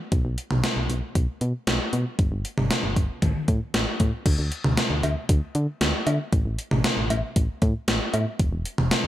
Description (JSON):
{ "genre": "synth-pop", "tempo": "116 BPM", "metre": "4/4", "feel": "straight", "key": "unclear", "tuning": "A4 = 439 Hz", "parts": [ { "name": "solid FM bass", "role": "bass", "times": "0.1-9.1 s", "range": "E1 to D3", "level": "-26 LUFS", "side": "equal", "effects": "none" }, { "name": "gated 80s digital drum machine", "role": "drums", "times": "0.1-9.0 s", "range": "cowbell, crash cymbal, hi-hat, kick drum, snare drum, toms", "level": "-23 LUFS", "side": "equal", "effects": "gated reverb, gated reverb snare, overdrive" } ], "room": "light reverb", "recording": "none", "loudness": "-22 LUFS", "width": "side -13 dB against mid", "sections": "0.0-4.3 A section; 4.3-9.1 B section", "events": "none", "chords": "none" }